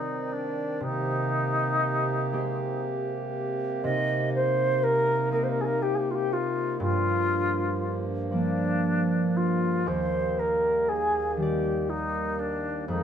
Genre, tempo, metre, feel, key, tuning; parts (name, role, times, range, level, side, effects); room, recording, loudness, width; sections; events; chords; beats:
celtic folk, Celtic slow air; 40 BPM (dotted quarters); 6/8; rubato; C minor; A4 = 439 Hz
mellow wooden flute; melody; 0.0-13.0 s; D4 to Eb5; -27 LUFS; left 1 dB
concert harp; accompaniment; 0.0-13.0 s; Eb2 to D5; -29 LUFS; right 1 dB
pedal harmonium; sustained chords; 0.0-13.0 s; Eb2 to D5; -32 LUFS; right 2 dB
moderate large studio reverb, RT60 1.2 s; band playing live in one room; -24 LUFS; side -8 dB against mid
0.0-13.0 A section
0.0 Cmadd9; 0.8 Abmaj7/C; 3.8 Cm7; 6.8 Gm7; 9.9 Ebmaj7
| 0.82 2.34 | 3.84 5.31 | 6.79 8.31 | 9.86 11.39 | 12.88